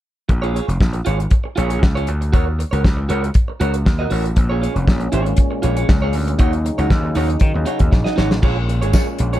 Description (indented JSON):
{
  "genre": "disco",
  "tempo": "118 BPM",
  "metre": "4/4",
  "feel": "straight",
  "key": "Bb minor",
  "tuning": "A4 = 440 Hz",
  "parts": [
    { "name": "electric guitar at the edge of break-up", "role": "accompaniment", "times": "0.3-9.4 s", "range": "Eb4 to Eb5", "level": "-24 LUFS", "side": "right 3 dB", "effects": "none" },
    { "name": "gritty slap bass", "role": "bass", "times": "0.3-9.4 s", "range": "F1 to Eb3", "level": "-19 LUFS", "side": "equal", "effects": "overdrive" },
    { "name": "warm soul drum kit", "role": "drums", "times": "0.3-9.4 s", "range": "crash cymbal, hi-hat, kick drum, snare drum", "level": "-16 LUFS", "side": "equal", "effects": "none" },
    { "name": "mellow French horn section", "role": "sustained chords", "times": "4.4-9.4 s", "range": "Bb2 to Eb4", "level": "-26 LUFS", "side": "left 1 dB", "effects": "stereo widening" },
    { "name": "tambourine", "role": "percussion", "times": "8.9-9.1 s", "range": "none", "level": "-33 LUFS", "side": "left 9 dB", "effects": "none" }
  ],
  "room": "studio ambience",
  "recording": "none",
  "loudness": "-15 LUFS",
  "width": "side -13 dB against mid",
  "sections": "0.3-8.4 A section",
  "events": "drum fill 7.9-8.4",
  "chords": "0.3 Bbm7; 2.3 Ebm7; 4.4 Bbm7; 6.4 Ebm7; 8.4 Bbm7"
}